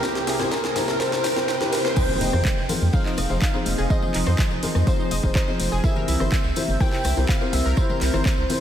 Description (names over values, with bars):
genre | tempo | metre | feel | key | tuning
progressive house | 124 BPM | 4/4 | straight | F minor | A4 = 440 Hz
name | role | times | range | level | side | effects
plucky unison lead | melody | 0.0-8.6 s | G4 to G5 | -29 LUFS | equal | lush chorus, sidechain pumping, tape echo
evolving wavetable pad | sustained chords | 0.0-8.6 s | C2 to C5 | -32 LUFS | equal | chorus, built-in reverb, sidechain pumping
analog pluck | arpeggios | 0.0-8.2 s | Eb4 to G5 | -32 LUFS | equal | chorus, cassette tape, sidechain pumping, tape echo
felt-muted upright piano | stabs | 0.0-8.6 s | C3 to C5 | -28 LUFS | left 3 dB | sidechain pumping, tape echo
damped 70s drum kit | drums | 0.0-8.6 s | hi-hat, snare drum, tambourine | -40 LUFS | left 3 dB | none
electronic kick drum | drums | 0.0-8.4 s | none | -22 LUFS | equal | high-pass filter on kick
house drum kit | drums | 0.0-8.6 s | crash cymbal, handclaps, hi-hat, ride cymbal, rim click, snare drum | -29 LUFS | equal | overdrive, high-pass filter on snare, high-pass filter on hats, high-pass filter on cymbals, high-pass filter on room
tambourine | percussion | 0.0-8.6 s | none | -38 LUFS | left 3 dB | none
riser and impact | sound effects | 0.0-3.9 s | none | -31 LUFS | right 1 dB | none
drifting glass-harmonics texture | texture | 0.0-8.6 s | G5 to G6 | -40 LUFS | right 1 dB | none
soft round pluck | second line | 2.0-8.6 s | Bb4 to G5 | -37 LUFS | equal | none
congas and bongos | percussion | 2.1-8.6 s | none | -34 LUFS | left 2 dB | sidechain pumping on perc
round analog bass | bass | 2.2-8.5 s | F1 to F2 | -23 LUFS | right 1 dB | sidechain pumping
room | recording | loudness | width
moderate lush hall reverb, RT60 2.1 s | dreamy mix soaked in reverb | -19 LUFS | side -10 dB against mid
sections
0.0-2.0 A section; 2.0-8.6 B section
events
build-up 0.0-2.0; drum fill 0.0-2.0; riser 0.0-2.0; drop 2.0-8.6; impact 2.0-3.9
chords
0.0 C7; 2.0 Fm7; 5.8 C7